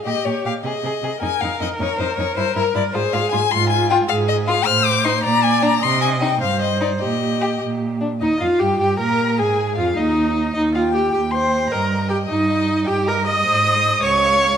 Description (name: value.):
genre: quick classical-period movement for string quartet.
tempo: 104 BPM (dotted quarters).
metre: 6/8.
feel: straight.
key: Eb major from 3.5 s.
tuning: A4 = 441 Hz.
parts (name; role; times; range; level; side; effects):
clear viola; accompaniment; 0.0-14.6 s; Eb4 to Eb5; -20 LUFS; right 2 dB; none.
rich violin; melody; 0.1-14.6 s; Eb4 to F6; -22 LUFS; left 9 dB; none.
warm violin; second line; 0.1-14.6 s; D4 to Eb6; -25 LUFS; left 3 dB; none.
rich cello; bass; 0.1-14.5 s; Db2 to C3; -23 LUFS; right 4 dB; none.
room: wet recital hall reverb, RT60 1.5 s.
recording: none.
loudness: -16 LUFS.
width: side -8 dB against mid.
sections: 0.0-8.2 A section; 8.2-14.6 B section.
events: none.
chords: 0.1 Bbm6; 0.6 Ab; 1.2 Bbmadd11/F; 2.4 Edim; 2.9 Fm/Ab; 4.7 Amadd11; 5.2 Bb; 5.8 Cm; 7.0 Eb/Bb; 8.2 Eb; 9.4 Ab5; 10.6 Eb; 11.7 Eb/G; 13.5 Ab; 14.0 Db.